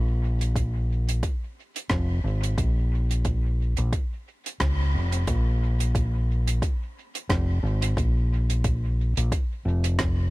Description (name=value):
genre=ambient dub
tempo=89 BPM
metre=4/4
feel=swing 57% on 16ths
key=Bb minor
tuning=A4 = 440 Hz
part: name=fingered electric bass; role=bass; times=0.0-10.3 s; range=F1 to Db2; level=-23 LUFS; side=equal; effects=none
part: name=deep reggae drum kit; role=drums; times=0.4-10.1 s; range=hi-hat, rim click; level=-33 LUFS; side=right 2 dB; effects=dub echo
part: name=electronic kick drum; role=drums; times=0.6-10.1 s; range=none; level=-28 LUFS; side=equal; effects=none
room=little or no reverb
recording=none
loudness=-23 LUFS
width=side -20 dB against mid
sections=0.0-5.3 A section; 5.3-10.3 B section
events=band accent 4.6-4.9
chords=none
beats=0.56 1.23 1.91 | 2.58 3.25 3.93 4.60 | 5.28 5.95 6.62 7.30 | 7.97 8.65 9.32 9.99